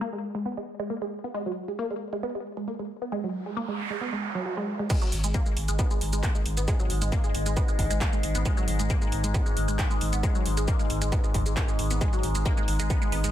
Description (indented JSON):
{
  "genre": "driving peak-time techno",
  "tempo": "135 BPM",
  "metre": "4/4",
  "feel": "straight",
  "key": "G# minor",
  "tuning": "A4 = 440 Hz",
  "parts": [
    { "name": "resonant blip pluck", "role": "riff", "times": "0.0-13.3 s", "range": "F#3 to B3", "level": "-32 LUFS", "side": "right 1 dB", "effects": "phaser, sidechain pumping, ping-pong delay" },
    { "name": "noise sweep", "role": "sound effects", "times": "3.4-4.9 s", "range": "none", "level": "-35 LUFS", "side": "right 5 dB", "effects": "none" },
    { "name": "overtone-sweeping drone", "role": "drone", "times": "5.6-13.3 s", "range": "G#2 to G#3", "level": "-33 LUFS", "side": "left 1 dB", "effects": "chorus, built-in reverb, sidechain pumping" },
    { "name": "electronic kick drum", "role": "drums", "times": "4.9-13.0 s", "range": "none", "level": "-26 LUFS", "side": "equal", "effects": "distortion, overdrive, small room ambience" },
    { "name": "techno drum kit", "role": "drums", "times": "4.9-13.3 s", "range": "crash cymbal, handclaps, hi-hat, shaker", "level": "-34 LUFS", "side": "right 1 dB", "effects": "overdrive, low-pass filter on hats, small room ambience, low-pass filter on cymbals, low-pass filter on perc, low-pass filter on snare" },
    { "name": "saturated sub bass", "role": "bass", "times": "5.1-13.3 s", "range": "G#1", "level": "-28 LUFS", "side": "equal", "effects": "overdrive, sidechain pumping, low-pass filter" }
  ],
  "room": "light reverb",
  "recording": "dense, heavily limited modern master, low-pass filter",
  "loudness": "-25 LUFS",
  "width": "side -12 dB against mid",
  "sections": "0.0-4.9 A section; 4.9-13.3 B section",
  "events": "filter sweep on synth arpeggio sound 0.0-4.9; filter sweep 0.0-4.9; noise sweep 3.4-4.9; drop 4.9-13.3",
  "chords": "0.0 F#sus2; 4.9 G#madd9"
}